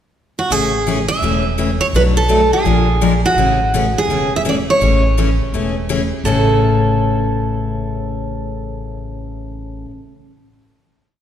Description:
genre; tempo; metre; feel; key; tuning
acoustic string swing (jazz manouche); 167 BPM; 4/4; swing 60% on 8ths; A major; A4 = 437 Hz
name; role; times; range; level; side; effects
picked steel-string acoustic guitar; melody; 0.4-9.8 s; F#4 to E5; -17 LUFS; right 2 dB; none
picked steel-string acoustic guitar; accompaniment; 0.5-9.9 s; A2 to Bb4; -18 LUFS; left 4 dB; none
upright bass; bass; 0.5-9.8 s; E1 to B1; -20 LUFS; equal; none
room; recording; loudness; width
wet scoring stage reverb, RT60 1.7 s; recorded in a church or concert hall; -14 LUFS; side -10 dB against mid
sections
0.0-0.5 pickup bar; 0.5-6.2 A section; 6.2-9.1 final chord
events
none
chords
0.0 N.C.; 0.5 Amaj7; 1.9 Bm7; 2.7 Bb7; 3.4 Amaj7; 6.2 A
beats
0.15 | 0.51 0.87 1.22 1.58 | 1.94 2.30 2.65 3.01 | 3.37 3.73 4.09 4.45 | 4.81 5.17 5.53 5.89 | 6.25 6.61 6.96 7.32 | 7.68 8.04 8.40 8.76

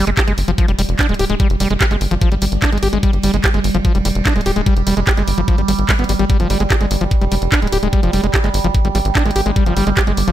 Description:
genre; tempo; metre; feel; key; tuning
psychedelic trance; 147 BPM; 4/4; straight; unclear; A4 = 440 Hz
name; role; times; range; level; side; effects
evolving wavetable pad; sustained chords; 0.1-10.3 s; G3; -24 LUFS; right 4 dB; phaser, built-in reverb, sidechain pumping
overdriven acid bass; riff; 0.0-10.3 s; F3 to G4; -20 LUFS; moving between left 4 dB and right 3 dB; distortion, auto-pan, sidechain pumping, tape echo
tight sequencer bass; bass; 0.0-10.3 s; D1 to Ab1; -18 LUFS; equal; none
drum and bass drum kit; drums; 0.1-10.3 s; handclaps, hi-hat; -21 LUFS; equal; none
electronic kick drum; drums; 0.2-10.1 s; none; -16 LUFS; equal; none
room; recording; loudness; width
little or no reverb; none; -13 LUFS; side -12 dB against mid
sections
0.0-10.3 A section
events
none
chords
0.0 G5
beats
0.17 0.58 0.99 | 1.40 1.81 2.21 2.62 | 3.03 3.44 3.85 4.25 | 4.66 5.07 5.48 5.89 | 6.30 6.70 7.11 7.52 | 7.93 8.34 8.74 9.15 | 9.56 9.97

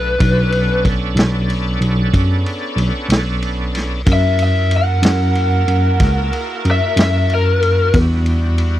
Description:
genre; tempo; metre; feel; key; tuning
slow blues; 62 BPM (dotted quarters); 12/8; straight; B minor; A4 = 439 Hz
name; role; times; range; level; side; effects
lead guitar through a small cranked amp; melody; 0.0-7.9 s; A#4 to F#5; -18 LUFS; left 2 dB; overdrive
bright tonewheel organ; sustained chords; 0.0-8.8 s; G3 to A5; -26 LUFS; right 2 dB; chorus vibrato, slow rotary speaker
tine electric piano; bass; 0.0-8.8 s; B1 to F#2; -16 LUFS; equal; medium tremolo
warm soul drum kit; drums; 0.2-8.7 s; kick drum, ride cymbal, snare drum; -20 LUFS; equal; none
bright saxophone section; sustained chords; 4.1-8.8 s; G3 to A#4; -27 LUFS; right 1 dB; none
room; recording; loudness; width
little or no reverb; dry, close 1970s-style studio recording; -13 LUFS; side -13 dB against mid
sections
0.0-8.8 A section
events
lead electric guitar solo 0.0-8.8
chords
0.0 Bm9; 4.1 F#7#9; 7.9 Em9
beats
| 0.20 1.17 2.13 3.10 | 4.07 5.04 6.00 6.97 | 7.93

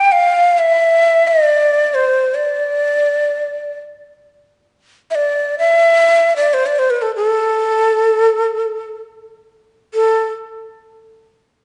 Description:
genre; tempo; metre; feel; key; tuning
Turkish makam ensemble; free time; none; none; A makam ussak; A4 = 441 Hz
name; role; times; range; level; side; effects
breathy bright ney; solo; 0.0-10.3 s; A4 to G5; -15 LUFS; equal; none
room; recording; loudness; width
wet recital hall reverb, RT60 1.5 s; nothing above 10.4 kHz; -15 LUFS; mono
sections
0.0-9.9 A section; 9.9-11.6 B section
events
none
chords
none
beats
free time

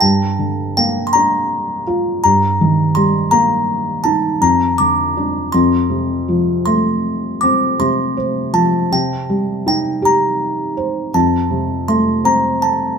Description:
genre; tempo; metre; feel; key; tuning
children's music, lullaby; 54 BPM (dotted quarters); 6/8; rubato; unclear; A4 = 442 Hz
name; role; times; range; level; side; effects
music box; melody; 0.0-13.0 s; G5 to D6; -17 LUFS; equal; none
felt-muted upright piano; accompaniment; 0.0-13.0 s; F2 to C5; -16 LUFS; equal; none
room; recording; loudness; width
moderate stone room reverb, RT60 1.1 s; band playing live in one room; -14 LUFS; side -6 dB against mid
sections
0.0-13.0 A section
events
none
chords
0.0 Gm7; 2.2 Eb/G; 4.4 Bb/F (rootless); 5.5 F; 8.9 Cm; 11.1 F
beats
| 0.01 1.13 | 2.23 3.31 | 4.41 5.52 | 6.65 7.79 | 8.92 10.04 | 11.14 12.24

